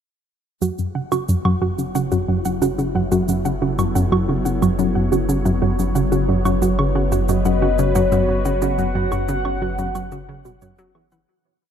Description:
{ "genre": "ambient, sequencer-driven space music", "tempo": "90 BPM", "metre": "4/4", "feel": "straight", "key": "F# minor", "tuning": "A4 = 442 Hz", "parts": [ { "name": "phased analog pad", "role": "sustained chords", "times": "1.7-11.3 s", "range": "F#3 to C#5", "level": "-26 LUFS", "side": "left 1 dB", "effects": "phaser, chorus, shimmer reverb" }, { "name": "warbly dusty pluck", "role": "arpeggios", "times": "0.6-11.2 s", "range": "F#4 to F#5", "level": "-26 LUFS", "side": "moving between equal and right 7 dB", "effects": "chorus, auto-pan, shimmer reverb, analog delay" }, { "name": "analog pluck", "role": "riff", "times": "0.6-11.2 s", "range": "F#2 to F#3", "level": "-20 LUFS", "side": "equal", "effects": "chorus, analog delay" }, { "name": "warm sub bass", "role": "bass", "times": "0.6-11.3 s", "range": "F#1", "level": "-25 LUFS", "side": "equal", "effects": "none" }, { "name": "shaker and woodblock", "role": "percussion", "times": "0.6-11.3 s", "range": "none", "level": "-31 LUFS", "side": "right 4 dB", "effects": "analog delay" }, { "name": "mellow horn-like synth lead", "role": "melody", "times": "6.0-10.6 s", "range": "C#5 to F#5", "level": "-25 LUFS", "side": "left 3 dB", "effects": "lush chorus, shimmer reverb, analog delay" } ], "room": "moderate huge ambient reverb, RT60 7.6 s", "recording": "none", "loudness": "-17 LUFS", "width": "side -8 dB against mid", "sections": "0.6-11.3 A section", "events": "fade-in on analog synth pad 0.6-11.3; fade-in on sub bass 0.6-11.3; filter sweep on synth arpeggio sound 0.6-11.3; fade-out 7.7-11.3", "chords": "0.6 F#m" }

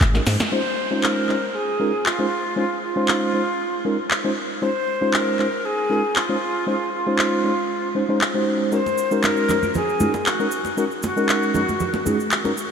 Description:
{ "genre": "nu-disco, nu disco", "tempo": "117 BPM", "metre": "4/4", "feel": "swing 53% on 16ths", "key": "Db major", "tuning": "A4 = 441 Hz", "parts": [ { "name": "house drum kit", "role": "drums", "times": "0.0-12.4 s", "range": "handclaps, hi-hat, snare drum", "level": "-25 LUFS", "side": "equal", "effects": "none" }, { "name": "congas and cabasa", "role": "percussion", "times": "0.0-0.5, 8.7-12.7 s", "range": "none", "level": "-28 LUFS", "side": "right 2 dB", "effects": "none" }, { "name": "mellow tine electric piano", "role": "accompaniment", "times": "0.1-12.5 s", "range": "Ab3 to C5", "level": "-23 LUFS", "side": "equal", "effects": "medium stereo tremolo, sidechain pumping, ping-pong delay" }, { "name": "breathy mellow jazz flute", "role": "melody", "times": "0.5-12.5 s", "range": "F4 to C5", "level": "-24 LUFS", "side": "equal", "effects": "ping-pong delay" } ], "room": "wet huge ambient reverb, RT60 4.8 s", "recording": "dreamy mix soaked in reverb", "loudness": "-19 LUFS", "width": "side -7 dB against mid", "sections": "0.5-12.7 A section", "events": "drum fill 0.0-0.5; band accent 0.4", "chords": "0.0 Ab7(no3); 0.5 Dbmaj7; 8.5 Ab7sus4" }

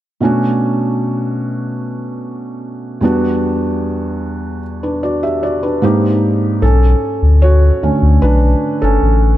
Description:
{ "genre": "contemporary R&B", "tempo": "75 BPM", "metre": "4/4", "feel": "straight", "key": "B minor", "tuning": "A4 = 440 Hz", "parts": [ { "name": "felt-muted upright piano", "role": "accompaniment", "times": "0.2-9.4 s", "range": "E2 to E5", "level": "-15 LUFS", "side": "right 1 dB", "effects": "none" }, { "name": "sub bass with octave", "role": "bass", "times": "6.6-9.3 s", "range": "G1 to D2", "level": "-10 LUFS", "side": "left 1 dB", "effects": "none" } ], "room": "light reverb, small room ambience", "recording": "none", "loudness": "-12 LUFS", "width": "side -14 dB against mid", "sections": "0.2-6.6 A section; 6.6-9.4 B section", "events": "felt piano solo 6.6-9.4", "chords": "0.2 Bm9; 3.0 Em9; 5.8 G#maj9; 6.6 Bm9" }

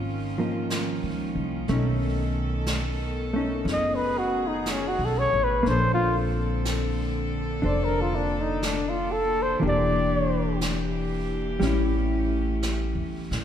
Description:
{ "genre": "jazz ballad", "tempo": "60 BPM", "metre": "4/4", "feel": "swing 68% on 8ths", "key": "unclear", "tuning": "A4 = 440 Hz", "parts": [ { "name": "hollow-body jazz guitar", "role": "accompaniment", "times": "0.0-13.4 s", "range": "E3 to C5", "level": "-29 LUFS", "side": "left 1 dB", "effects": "none" }, { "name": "warm symphonic cello section", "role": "sustained chords", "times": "0.0-13.4 s", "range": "D3 to A4", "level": "-32 LUFS", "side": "equal", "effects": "none" }, { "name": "upright bass", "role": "bass", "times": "0.0-13.4 s", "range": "E1 to A2", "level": "-28 LUFS", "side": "equal", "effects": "none" }, { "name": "jazz brush drum kit", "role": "drums", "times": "0.7-13.4 s", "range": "brushed snare drum, hi-hat, snare drum", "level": "-34 LUFS", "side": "equal", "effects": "none" }, { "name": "warm flugelhorn", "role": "melody", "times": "3.7-10.6 s", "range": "C#4 to D#5", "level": "-25 LUFS", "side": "left 1 dB", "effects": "none" } ], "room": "wet concert hall reverb, RT60 2.0 s", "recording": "recorded in a church or concert hall", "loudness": "-23 LUFS", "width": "side -9 dB against mid", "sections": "0.0-13.4 A section", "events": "flugelhorn solo 0.0-13.4", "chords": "0.0 Db69; 1.7 B9; 5.7 Bbmaj9; 9.6 Em7b5; 11.6 A7" }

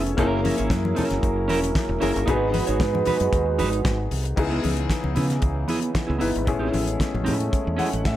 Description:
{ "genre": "disco", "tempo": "114 BPM", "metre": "4/4", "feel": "straight", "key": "C# minor", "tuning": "A4 = 441 Hz", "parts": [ { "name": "mellow electric guitar", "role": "accompaniment", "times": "0.0-8.1 s", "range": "B3 to C#5", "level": "-28 LUFS", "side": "right 4 dB", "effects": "none" }, { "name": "warm concert grand piano", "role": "accompaniment", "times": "0.0-8.2 s", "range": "A#3 to F#5", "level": "-28 LUFS", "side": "left 5 dB", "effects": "none" }, { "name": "mellow French horn section", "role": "sustained chords", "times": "0.0-8.2 s", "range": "C#3 to B4", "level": "-28 LUFS", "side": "right 3 dB", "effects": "none" }, { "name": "fingered electric bass", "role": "bass", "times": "0.0-8.2 s", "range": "E1 to C#3", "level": "-26 LUFS", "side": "equal", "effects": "none" }, { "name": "damped 70s drum kit", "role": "drums", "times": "0.1-8.2 s", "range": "crash cymbal, hi-hat, kick drum, snare drum", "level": "-27 LUFS", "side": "equal", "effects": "none" }, { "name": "congas", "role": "percussion", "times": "0.2-8.2 s", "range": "none", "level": "-32 LUFS", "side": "left 3 dB", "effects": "none" } ], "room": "light reverb, small room ambience", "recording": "none", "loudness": "-20 LUFS", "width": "side -13 dB against mid", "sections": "0.0-4.4 A section; 4.4-8.2 B section", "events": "grand piano fill 0.0, 7.5-8.2", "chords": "0.2 F#7; 2.3 G#m7; 4.4 C#m7; 6.5 Amaj7" }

